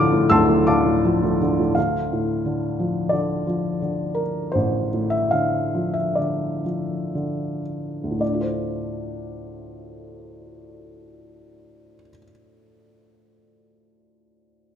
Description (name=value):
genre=classical, lyrical solo piano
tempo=54-89 BPM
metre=4/4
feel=rubato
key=D minor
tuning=A4 = 441 Hz
part: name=felt-muted upright piano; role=solo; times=0.0-14.8 s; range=D1 to F6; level=-20 LUFS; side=equal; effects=none
room=moderate concert hall reverb, RT60 2.1 s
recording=minimal, uncompressed stereo recording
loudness=-20 LUFS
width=side -8 dB against mid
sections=0.0-1.8 A section; 1.8-8.2 B section; 8.2-12.5 C section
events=slowing down 1.8-8.2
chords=0.0 Dm7; 1.8 Dm; 8.2 Dm7